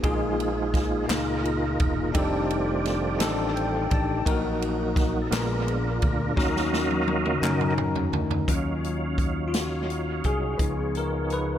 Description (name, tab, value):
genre	slow gospel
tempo	57 BPM (dotted quarters)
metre	6/8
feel	straight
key	Eb minor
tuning	A4 = 441 Hz
part	bell-like tine electric piano	accompaniment	0.0-11.6 s	Bb2 to A5	-28 LUFS	left 3 dB	ensemble chorus, dub echo
part	tonewheel organ	sustained chords	0.0-11.6 s	Eb3 to F5	-29 LUFS	right 4 dB	fast rotary speaker, chorus vibrato
part	fingered electric bass	bass	0.0-11.6 s	Fb1 to Gb2	-30 LUFS	equal	none
part	swinging big-band drum kit	drums	0.0-11.5 s	hi-hat, kick drum, ride cymbal, snare drum, toms	-28 LUFS	equal	dub echo
part	group handclap	percussion	1.1-7.8 s	none	-39 LUFS	left 5 dB	none
room	light reverb, small room ambience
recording	echo-heavy mix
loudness	-23 LUFS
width	side -10 dB against mid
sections	0.0-8.5 A section; 8.5-11.6 B section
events	tonewheel organ solo 0.0-8.5; tine electric piano fill 3.2-4.3; drum fill 6.4-8.5; tine electric piano solo 8.5-11.6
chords	0.0 Bb7sus4; 2.1 F13; 4.3 Ebm/Bb; 5.3 Bb7b9; 6.4 Ebm7; 8.5 Ebm9; 10.6 Db9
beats	| 0.04 1.09 | 2.15 3.20 | 4.26 5.31 | 6.37 7.43 | 8.48 9.54 | 10.60